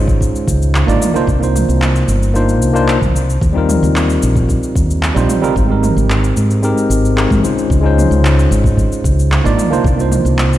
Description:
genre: sunset chillout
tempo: 112 BPM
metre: 4/4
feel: straight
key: unclear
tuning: A4 = 440 Hz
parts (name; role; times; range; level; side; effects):
- bright tine electric piano; accompaniment; 0.0-10.6 s; G3 to D5; -16 LUFS; moving between left 4 dB and right 5 dB; auto-pan, tape echo
- woody fretless electric bass; bass; 0.0-10.6 s; G1 to Ab2; -14 LUFS; equal; none
- deep house drum kit; drums; 0.1-10.6 s; cabasa, handclaps, toms; -21 LUFS; equal; overdrive
- electronic kick drum; drums; 0.1-10.0 s; none; -16 LUFS; equal; none
room: light reverb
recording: played on a big sound system in a bare room, large studio reverb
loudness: -11 LUFS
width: side -13 dB against mid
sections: 0.0-10.6 A section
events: none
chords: 0.0 Dbmaj9; 1.0 Cm11; 3.4 Eb69; 5.6 Abmaj9; 7.7 Dbmaj9; 9.6 Cm11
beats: 0.21 0.74 | 1.28 1.81 2.35 2.89 | 3.42 3.96 4.49 5.03 | 5.57 6.10 6.64 7.17 | 7.71 8.24 8.78 9.31 | 9.85 10.39

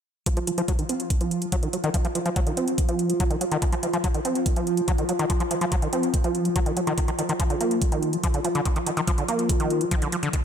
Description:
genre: psychedelic trance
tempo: 143 BPM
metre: 4/4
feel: straight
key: unclear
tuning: A4 = 441 Hz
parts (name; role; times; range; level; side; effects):
- pulsing gated texture; sustained chords; 0.3-10.4 s; F3 to F4; -28 LUFS; equal; chorus, built-in reverb, sidechain pumping
- overdriven acid bass; riff; 0.3-10.4 s; D3 to C4; -26 LUFS; equal; auto-pan, cassette tape, sidechain pumping, tape echo
- electronic hi-hat; drums; 0.3-10.4 s; none; -32 LUFS; right 2 dB; studio reverb
- electronic kick drum; drums; 0.3-10.4 s; none; -24 LUFS; equal; studio reverb
room: light reverb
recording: none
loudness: -22 LUFS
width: side -8 dB against mid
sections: 0.3-10.4 A section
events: filter sweep on acid bass 0.3-10.4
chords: 0.3 F5; 7.0 Eb5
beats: | 0.26 0.68 1.10 1.52 | 1.94 2.36 2.78 3.20 | 3.62 4.04 4.46 4.88 | 5.30 5.72 6.14 6.56 | 6.98 7.40 7.82 8.23 | 8.65 9.07 9.49 9.91 | 10.33

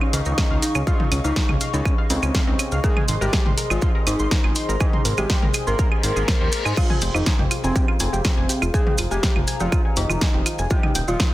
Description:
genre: melodic techno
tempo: 122 BPM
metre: 4/4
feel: straight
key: F minor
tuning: A4 = 440 Hz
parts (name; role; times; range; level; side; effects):
- dark analog pad; sustained chords; 0.0-11.3 s; Ab4 to Eb6; -31 LUFS; left 1 dB; chorus, sidechain pumping
- warbly dusty pluck; arpeggios; 0.0-11.3 s; Db4 to Ab6; -30 LUFS; equal; chorus, sidechain pumping, digital delay
- punchy analog drum machine; drums; 0.0-11.3 s; claves, crash cymbal, hi-hat, snare drum, toms; -26 LUFS; equal; sidechain pumping on toms, sidechain pumping on perc, sidechain pumping on hats, sidechain pumping on cymbals
- fat analog lead; melody; 0.1-11.3 s; C4 to Bb4; -28 LUFS; equal; tape echo
- dark detuned synth bell; second line; 0.1-11.3 s; C4 to Bb4; -32 LUFS; left 1 dB; chorus, tremolo, sidechain pumping, digital delay
- fat analog bass; bass; 0.1-11.2 s; Eb1 to Ab2; -24 LUFS; equal; sidechain pumping
- maracas; percussion; 0.1-11.3 s; none; -31 LUFS; right 2 dB; none
- electronic kick drum; drums; 0.4-11.3 s; none; -20 LUFS; equal; distortion
- reverse cymbal; sound effects; 5.9-6.8 s; none; -32 LUFS; left 4 dB; none
room: little or no reverb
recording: dense, heavily limited modern master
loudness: -18 LUFS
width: side -16 dB against mid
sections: 0.0-11.3 A section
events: reverse cymbal 5.9-6.8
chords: 0.0 Dbadd9; 2.8 Ab; 6.8 Fm; 10.7 Eb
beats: 0.38 | 0.87 1.36 1.85 2.35 | 2.84 3.33 3.82 4.31 | 4.80 5.30 5.79 6.28 | 6.77 7.26 7.76 8.25 | 8.74 9.23 9.72 10.21 | 10.71 11.20

